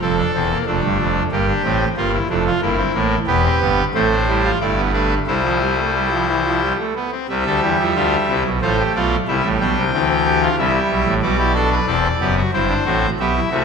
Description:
classical, baroque-style 4-part fugue for pipe organ; 91 BPM; 3/4; straight; C major from 3.3 s; A4 = 440 Hz
pipe organ, trumpet; solo; 0.0-13.6 s; E1 to G5; -16 LUFS; equal
wet scoring stage reverb, RT60 1.7 s; minimal, uncompressed stereo recording; -16 LUFS; side -6 dB against mid
0.0-7.3 A section; 7.3-13.6 B section
0.0 F; 0.7 Dm/F; 1.3 Gm; 2.6 Edim/G; 3.3 Em; 3.9 Am; 4.6 G; 5.3 C; 8.6 F/A; 9.3 C; 11.2 G/B; 12.5 C/G
0.01 0.67 | 1.32 1.98 2.63 | 3.28 3.94 4.60 | 5.27 5.95 6.63 | 7.30 7.96 8.62 | 9.27 9.93 10.57 | 11.22 11.88 12.54 | 13.19

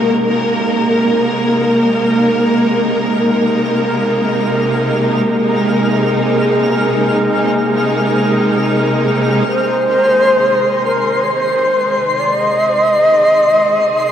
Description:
ambient; free time; Ab major; A4 = 438 Hz
clear studio string section; sustained chords; 0.0-14.1 s; C3 to Bb4; -14 LUFS; equal
twinkling granular texture; texture; 0.1-14.1 s; C6 to F6; -23 LUFS; left 1 dB; built-in reverb
analog drone; drone; 4.9-14.1 s; Ab3 to Ab4; -20 LUFS; equal; chorus
long shakuhachi; melody; 9.5-14.1 s; Bb4 to Eb5; -12 LUFS; equal; diffuse ambient delay
wet shimmer reverb, RT60 9.5 s; worn, warbling old tape, cassette tape, warbly pitch drift; -12 LUFS; side -9 dB against mid
0.0-9.5 A section; 9.5-14.1 B section
fade-in on synth texture 0.0-9.5; fade-in on string section 9.5-14.1
0.0 Abadd9
free time

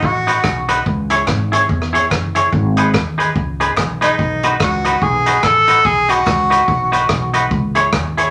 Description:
ska; 144 BPM; 4/4; swing 60% on 8ths; A4 = 440 Hz
breathy tenor saxophone; melody; 0.0-0.7, 4.0-7.3 s; D#4 to A4; -17 LUFS; equal
upright bass; bass; 0.0-8.3 s; F#1 to E2; -24 LUFS; equal
vintage drum kit; drums; 0.0-8.3 s; hi-hat, kick drum, rim click; -23 LUFS; equal
semi-hollow electric guitar; accompaniment; 0.3-8.3 s; D#4 to C#5; -19 LUFS; equal
group handclap; percussion; 0.5-8.1 s; -30 LUFS; equal
wet studio reverb, RT60 0.5 s; -15 LUFS; mono
0.0-8.3 A section
0.0 B; 0.9 C#m; 2.5 G#m; 4.2 B; 7.5 C#m
0.03 0.44 | 0.86 1.28 1.69 2.11 | 2.52 2.94 3.35 3.77 | 4.19 4.60 5.02 5.43 | 5.85 6.27 6.68 7.10 | 7.52 7.93

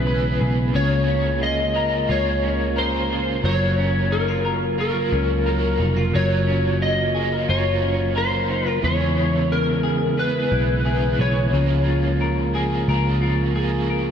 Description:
dream pop; 89 BPM; 4/4; straight; Db major; A4 = 441 Hz
electric slide guitar; melody; 0.0-13.5 s; Bb4 to Eb5; -24 LUFS; left 1 dB; ensemble chorus, ping-pong delay
crunchy overdriven guitar; accompaniment; 0.0-14.1 s; Db3 to Db5; -30 LUFS; right 4 dB; tremolo, analog chorus
mellow tonewheel organ; sustained chords; 0.0-14.1 s; Db3 to F4; -25 LUFS; right 2 dB; chorus vibrato, stopped rotary speaker
semi-hollow electric guitar; arpeggios; 0.0-14.1 s; Db3 to B4; -26 LUFS; left 4 dB; lush chorus, ping-pong delay
vintage muted picked electric bass; bass; 0.0-14.1 s; F1 to E2; -23 LUFS; equal
moderate plate reverb, RT60 3.3 s; dreamy mix soaked in reverb; -18 LUFS; side -8 dB against mid
0.0-14.1 A section
0.0 E6; 0.7 Db6; 3.4 Gbmaj7; 8.8 E6; 11.5 Db6
0.07 | 0.74 1.42 2.09 2.77 | 3.44 4.12 4.79 5.46 | 6.14 6.81 7.49 8.16 | 8.83 9.51 10.18 10.86 | 11.53 12.21 12.88 13.55

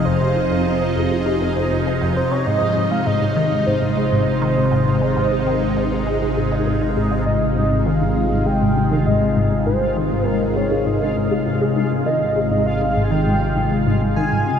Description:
ambient, sequencer-driven space music; 100 BPM; 4/4; straight; A4 = 440 Hz
pulse-width lead; melody; 0.0-14.6 s; C5 to Ab5; -23 LUFS; right 1 dB; chorus, tape echo
evolving wavetable pad; sustained chords; 0.0-14.6 s; C3 to Eb5; -20 LUFS; left 1 dB; phaser, built-in reverb
fat analog bass; bass; 0.0-14.6 s; F1 to Db2; -27 LUFS; equal
bubbling stepped-filter texture; texture; 0.0-14.6 s; F4 to F5; -32 LUFS; left 1 dB; chorus, built-in reverb
resonant blip pluck; riff; 0.1-14.6 s; F2 to Ab3; -22 LUFS; equal; phaser, analog chorus, tape echo
wet huge ambient reverb, RT60 7.9 s; dark, warm production; -16 LUFS; side -8 dB against mid
0.0-14.6 A section
fade-in on analog synth bass 0.0-14.6
0.0 Fm7; 2.5 Abmaj7
| 0.07 0.67 1.26 1.86 | 2.46 3.06 3.67 4.26 | 4.87 5.46 6.07 6.67 | 7.26 7.87 8.46 9.06 | 9.66 10.27 10.87 11.46 | 12.06 12.66 13.27 13.87 | 14.46

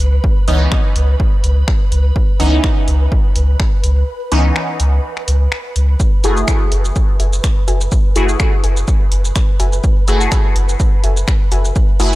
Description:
dub techno; 125 BPM; 4/4; swing 55% on 16ths; F# minor; A4 = 439 Hz
pure sine sub bass; bass; 0.0-12.2 s; F#1 to C#2; -14 LUFS; equal; sidechain pumping
punchy analog drum machine; drums; 0.0-12.2 s; finger snaps, hi-hat, shaker; -24 LUFS; left 1 dB
flickering grainy texture; texture; 0.0-12.2 s; B4; -29 LUFS; right 1 dB; built-in reverb, sidechain pumping
electronic kick drum; drums; 0.2-11.9 s; -15 LUFS; equal
resonant sweep polysynth; stabs; 0.5-12.1 s; E3 to G#4; -20 LUFS; equal; chorus, phaser, cassette tape, sidechain pumping, dub echo
warbly dusty pluck; riff; 7.2-11.6 s; F#4 to G#5; -28 LUFS; left 3 dB; chorus, sidechain pumping, dub echo
digital ambience; dry, gritty hardware recording; -12 LUFS; side -18 dB against mid
0.0-12.2 A section
kick drops out 4.1-6.0
0.0 C#7(no3); 6.0 F#m9
| 0.24 0.72 1.20 1.68 | 2.16 2.64 3.12 3.60 | 4.08 4.56 5.04 5.52 | 6.00 6.48 6.96 7.44 | 7.92 8.40 8.88 9.36 | 9.84 10.32 10.80 11.28 | 11.76

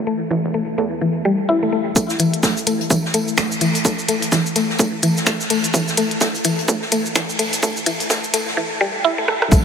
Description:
minimal techno; 127 BPM; 4/4; swing 59% on 16ths; A4 = 440 Hz
rubbery square bass; bass; 0.0-1.9, 9.5-9.6 s; E1 to E2; -27 LUFS; equal; tube saturation, sidechain pumping, high-pass filter
mallet-like synth pluck; riff; 0.1-9.6 s; E3 to E4; -19 LUFS; left 1 dB; chorus, sidechain pumping, diffuse ambient delay
electronic kick drum; drums; 2.0-9.6 s; -18 LUFS; equal; overdrive, high-pass filter on kick
minimal click drum kit; drums; 2.0-9.6 s; cabasa, finger snaps, hi-hat, rim click; -21 LUFS; equal
unplugged drum kit; drums; 2.0-9.6 s; hi-hat, snare drum, tambourine; -28 LUFS; equal; sidechain pumping on hats, high-pass filter on hats, high-pass filter on snare, sidechain pumping on perc, high-pass filter on perc, high-pass filter on room
wet huge ambient reverb, RT60 7.7 s; dreamy mix soaked in reverb, high-pass filter; -16 LUFS; side -7 dB against mid
0.0-2.0 A section; 2.0-9.5 B section
build-up 2.0-9.5; filter sweep on synth arpeggio sound 2.0-9.5; drum fill 9.3
0.0 A5
| 0.07 0.54 1.01 1.49 | 1.96 2.43 2.90 3.38 | 3.85 4.32 4.79 5.27 | 5.74 6.21 6.68 7.16 | 7.63 8.10 8.57 9.05 | 9.52

